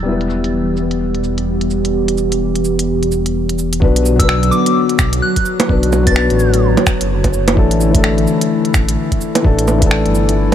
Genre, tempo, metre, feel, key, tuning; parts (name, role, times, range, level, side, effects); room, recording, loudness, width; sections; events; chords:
future garage; 128 BPM; 4/4; swing 60% on 16ths; B minor; A4 = 440 Hz
felt-muted upright piano; accompaniment; 0.0-10.5 s; E3 to B4; -18 LUFS; left 5 dB; sidechain pumping, ping-pong delay
warbly tape-like pad; sustained chords; 0.0-10.5 s; D3 to C#5; -18 LUFS; right 1 dB; chorus, built-in reverb, vintage 12-bit sampler grit, sidechain pumping
dark detuned saw bass; bass; 0.0-10.5 s; E1 to B1; -17 LUFS; equal; tube saturation
organic electronic drum kit; drums; 0.2-10.5 s; bongos, cabasa, finger snaps, hi-hat; -20 LUFS; right 2 dB; small room ambience
electronic kick drum; drums; 3.8-9.9 s; -15 LUFS; equal; small room ambience
soft synth bell; melody; 4.2-6.5 s; D6 to A6; -22 LUFS; left 1 dB; chorus, phaser, digital delay
light reverb; low-pass filter; -12 LUFS; side -10 dB against mid
0.0-3.8 A section; 3.8-10.5 B section
filter sweep on ambient pad 0.0-3.8; filter sweep 0.0-3.8
0.1 Em; 3.8 Bm; 7.6 Asus4